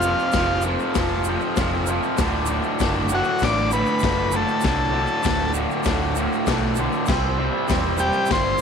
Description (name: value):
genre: garage rock duo or trio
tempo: 98 BPM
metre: 4/4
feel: straight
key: unclear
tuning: A4 = 440 Hz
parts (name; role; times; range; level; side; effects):
- overdriven combo organ; melody; 0.0-8.6 s; F4 to D5; -22 LUFS; left 1 dB; none
- combo organ; sustained chords; 0.0-8.6 s; C4 to C6; -34 LUFS; right 2 dB; none
- raw garage guitar; riff; 0.0-8.6 s; D2 to C4; -22 LUFS; right 1 dB; overdrive
- hollow-body short-scale fingered electric bass; bass; 0.0-8.6 s; D1 to C2; -27 LUFS; right 2 dB; tube saturation
- tube shaker; percussion; 0.0-8.6 s; none; -35 LUFS; right 18 dB; none
- raw garage drum kit; drums; 0.3-8.4 s; crash cymbal, hi-hat, kick drum, snare drum; -26 LUFS; left 4 dB; none
room: small room ambience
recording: 1960s-style stereo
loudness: -19 LUFS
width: side -6 dB against mid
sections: 0.0-8.6 A section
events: transistor combo organ fill 0.4-2.2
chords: 0.0 F; 2.2 D; 7.1 C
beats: 0.35 0.97 1.58 | 2.19 2.80 3.41 4.03 | 4.64 5.25 5.86 6.47 | 7.08 7.69 8.30